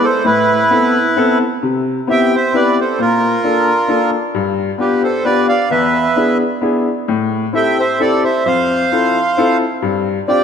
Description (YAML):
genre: musette waltz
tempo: 132 BPM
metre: 3/4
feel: swing 54% on 8ths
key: C major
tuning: A4 = 438 Hz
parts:
  - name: accordion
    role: melody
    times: 0.0-10.4 s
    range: E4 to G5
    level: -15 LUFS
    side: right 2 dB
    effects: none
  - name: clear upright piano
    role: accompaniment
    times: 0.0-10.4 s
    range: E2 to A4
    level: -16 LUFS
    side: left 3 dB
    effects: none
room: wet concert hall reverb, RT60 2.3 s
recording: none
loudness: -12 LUFS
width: side -7 dB against mid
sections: 0.0-1.6 A section; 1.6-10.4 B section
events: none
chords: 0.2 Amadd9; 1.6 Cmaj7; 3.0 Bbmaj7; 4.3 G7; 5.7 E7; 7.1 Am7; 8.5 Fmaj7; 9.8 G7sus4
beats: | 0.24 0.70 1.17 | 1.63 2.08 2.54 | 2.99 3.44 3.89 | 4.34 4.80 5.25 | 5.71 6.17 6.63 | 7.09 7.55 8.00 | 8.46 8.92 9.37 | 9.82 10.28